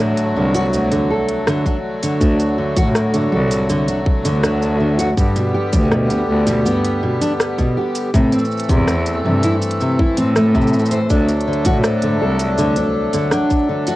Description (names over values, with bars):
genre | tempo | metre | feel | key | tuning
folktronica | 81 BPM | 4/4 | straight | D mixolydian | A4 = 440 Hz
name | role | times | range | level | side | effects
accordion | sustained chords | 0.0-14.0 s | D3 to A4 | -21 LUFS | equal | cassette tape
fingerpicked steel-string acoustic guitar | arpeggios | 0.0-14.0 s | B2 to C5 | -20 LUFS | equal | cassette tape, tape echo
clear cello | bass | 0.0-12.7 s | C2 to A2 | -19 LUFS | equal | tube saturation
organic electronic drum kit | drums | 0.2-14.0 s | hi-hat, rim click, shaker, toms | -23 LUFS | equal | studio reverb, cassette tape
electronic kick drum | drums | 1.7-13.7 s | none | -17 LUFS | equal | studio reverb, cassette tape
large celesta | second line | 11.1-14.0 s | C5 to D6 | -25 LUFS | left 11 dB | cassette tape, tape echo
room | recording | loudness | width
light reverb | home recording on cassette | -14 LUFS | side -17 dB against mid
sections
0.0-14.0 A section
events
none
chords
0.0 D; 5.2 G; 8.1 Am; 11.1 D